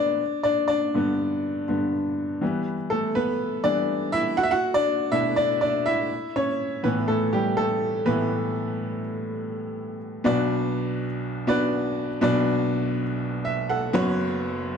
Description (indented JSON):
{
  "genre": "pop",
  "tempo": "122 BPM",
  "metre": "4/4",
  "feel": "straight",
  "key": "B minor",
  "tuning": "A4 = 440 Hz",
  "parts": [
    { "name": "clear upright piano", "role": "solo", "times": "0.0-14.8 s", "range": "F#1 to F#5", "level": "-22 LUFS", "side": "equal", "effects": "none" }
  ],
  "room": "moderate large studio reverb, RT60 1.2 s",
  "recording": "dark, warm production",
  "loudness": "-22 LUFS",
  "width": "side -7 dB against mid",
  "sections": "0.0-10.3 A section; 10.3-14.8 B section",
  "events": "upright piano solo 0.0-10.3",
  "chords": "0.2 G; 2.4 Em; 4.4 Bm7; 6.1 Asus2; 10.3 Bm; 13.9 F#sus4"
}